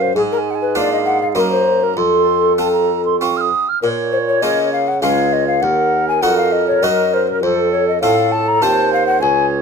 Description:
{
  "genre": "classical, baroque-style sonata movement with continuo",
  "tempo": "100 BPM",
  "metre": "3/4",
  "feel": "straight",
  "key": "Bb minor",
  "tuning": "A4 = 442 Hz",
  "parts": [
    { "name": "mellow hollow tenor recorder", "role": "melody", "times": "0.0-9.5 s", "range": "Ab4 to Bb5", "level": "-16 LUFS", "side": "left 5 dB", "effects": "none" },
    { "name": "bright wooden flute", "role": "second line", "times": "0.0-9.6 s", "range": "A4 to F6", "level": "-20 LUFS", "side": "right 8 dB", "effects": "none" },
    { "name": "harpsichord", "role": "accompaniment", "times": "0.0-9.6 s", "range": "Db2 to C5", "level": "-22 LUFS", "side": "right 1 dB", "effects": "none" },
    { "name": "mellow bassoon", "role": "bass", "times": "0.0-9.6 s", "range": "Db2 to Db3", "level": "-20 LUFS", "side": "right 3 dB", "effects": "none" }
  ],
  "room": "light reverb",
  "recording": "minimal, uncompressed stereo recording",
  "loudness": "-13 LUFS",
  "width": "side -6 dB against mid",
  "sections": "0.0-3.8 A section; 3.8-9.6 B section",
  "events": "none",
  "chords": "0.2 Bb7/Ab; 1.4 Ebm/Gb; 2.0 F; 3.8 Bbm; 5.0 Db; 5.6 Ebm; 7.4 F; 8.6 F7/Eb",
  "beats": "| 0.16 0.76 1.35 | 1.97 2.60 3.21 | 3.83 4.43 5.03 | 5.63 6.23 6.83 | 7.43 8.03 8.62 | 9.22"
}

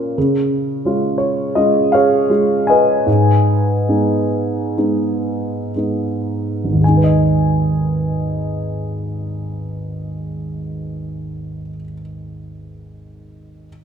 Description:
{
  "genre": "classical, lyrical solo piano",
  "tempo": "53-90 BPM",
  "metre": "4/4",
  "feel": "rubato",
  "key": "G# dorian",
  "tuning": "A4 = 439 Hz",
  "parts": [
    { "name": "dark baby grand piano", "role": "solo", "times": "0.0-13.7 s", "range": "G#1 to G#5", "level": "-16 LUFS", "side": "equal", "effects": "none" }
  ],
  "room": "wet recital hall reverb, RT60 1.4 s",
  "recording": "recorded in a church or concert hall",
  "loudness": "-15 LUFS",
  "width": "side -8 dB against mid",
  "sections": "0.0-6.8 A section; 6.8-11.2 B section",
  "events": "slowing down 0.2-6.8",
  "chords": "0.2 C#; 3.1 G#m",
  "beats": "| 0.17 0.85 1.56 2.30 | 3.08 3.89 4.77 5.75 | 6.83 7.95 9.03 10.10"
}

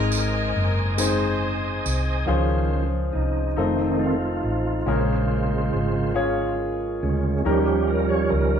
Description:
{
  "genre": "slow gospel",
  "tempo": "46 BPM (dotted quarters)",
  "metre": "6/8",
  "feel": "straight",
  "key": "Db major",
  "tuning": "A4 = 441 Hz",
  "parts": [
    { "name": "clear horn section", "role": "melody", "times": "0.0-2.3 s", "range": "Eb4 to C5", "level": "-29 LUFS", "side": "left 1 dB", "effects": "none" },
    { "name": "clear grand piano", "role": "accompaniment", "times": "0.0-8.6 s", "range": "Ab2 to Db5", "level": "-27 LUFS", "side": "left 4 dB", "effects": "none" },
    { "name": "bright tonewheel organ", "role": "sustained chords", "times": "0.0-8.6 s", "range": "Db3 to Eb6", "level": "-25 LUFS", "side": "right 3 dB", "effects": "fast rotary speaker, chorus vibrato" },
    { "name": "hollow-body short-scale fingered electric bass", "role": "bass", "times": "0.0-8.6 s", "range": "F1 to Eb2", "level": "-25 LUFS", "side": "equal", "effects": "none" },
    { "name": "tambourine", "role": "percussion", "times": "0.1-2.3 s", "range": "none", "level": "-31 LUFS", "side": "right 6 dB", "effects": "none" },
    { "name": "mellow French horn section", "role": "sustained chords", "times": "2.3-8.6 s", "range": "Db3 to C5", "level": "-30 LUFS", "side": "equal", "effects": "none" }
  ],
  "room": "wet large studio reverb, RT60 1.2 s",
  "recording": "band playing live in one room",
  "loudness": "-20 LUFS",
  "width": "side -8 dB against mid",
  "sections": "0.0-2.3 A section; 2.3-8.6 B section",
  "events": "tonewheel organ solo 2.3-8.6",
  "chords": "0.0 Ab; 2.3 Dbmaj7; 3.6 F7; 4.9 Bbm7; 7.5 Eb7",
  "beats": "0.99 | 2.28 3.58 | 4.87 6.17 | 7.46"
}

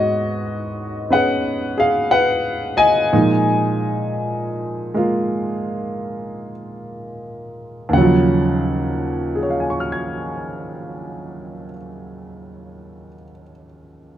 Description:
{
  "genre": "solo jazz",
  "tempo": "42-62 BPM",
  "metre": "4/4",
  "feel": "swing 66% on 8ths, rubato",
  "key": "Eb minor",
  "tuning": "A4 = 442 Hz",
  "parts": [
    { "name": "warm grand piano", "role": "solo", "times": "0.0-14.2 s", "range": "Eb2 to Ab6", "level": "-18 LUFS", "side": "equal", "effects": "none" }
  ],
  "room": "light reverb",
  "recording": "close, detailed microphones",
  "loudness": "-17 LUFS",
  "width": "side -11 dB against mid",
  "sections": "0.0-7.9 A section; 7.9-13.4 B section",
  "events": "slowing down 0.0-7.9",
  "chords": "0.0 Abm7; 3.1 Bb7sus4; 7.9 Ebm9",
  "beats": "0.13 1.11 2.09 | 3.12 4.19 5.32 6.56 | 7.93 9.33 10.67 12.00"
}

